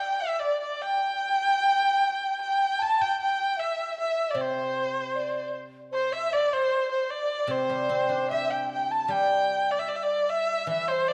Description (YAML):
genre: chinese traditional, Chinese chamber ensemble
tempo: 76 BPM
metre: 2/4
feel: rubato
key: C gong mode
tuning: A4 = 440 Hz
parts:
  - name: rich erhu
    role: melody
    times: 0.0-11.1 s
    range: C5 to A5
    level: -29 LUFS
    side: equal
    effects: none
  - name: mellow hollow large dizi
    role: second line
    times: 0.0-11.1 s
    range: C5 to A5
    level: -31 LUFS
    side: equal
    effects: none
  - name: guzheng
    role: accompaniment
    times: 4.3-11.1 s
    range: C3 to G4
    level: -34 LUFS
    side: equal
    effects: none
room: wet recital hall reverb, RT60 1.6 s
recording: dark, warm production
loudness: -26 LUFS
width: mono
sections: 0.0-9.1 A section; 9.1-11.1 B section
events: none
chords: none